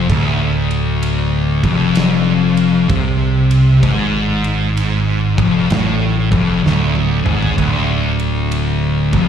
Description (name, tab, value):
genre	stoner and doom metal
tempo	64 BPM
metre	4/4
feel	swing 65% on 8ths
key	unclear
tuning	A4 = 440 Hz
part	thick fuzz guitar	riff	0.0-9.3 s	D2 to C3	-17 LUFS	left 9 dB	distortion, slapback echo
part	thick fuzz guitar	riff	0.0-9.3 s	D2 to C3	-19 LUFS	right 8 dB	distortion, slapback echo
part	picked electric bass	bass	0.0-9.3 s	D1 to C2	-18 LUFS	right 1 dB	overdrive
part	big rock drum kit	drums	0.1-9.3 s	kick drum, ride cymbal, snare drum, toms	-23 LUFS	right 1 dB	none
room	small room ambience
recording	live gig heard through the venue's PA, club reverb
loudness	-13 LUFS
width	side -8 dB against mid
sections	0.0-9.3 A section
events	drum fill 6.6-7.6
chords	0.0 Dm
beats	| 0.09 1.02 1.96 2.90 | 3.83 4.77 5.71 6.64 | 7.58 8.52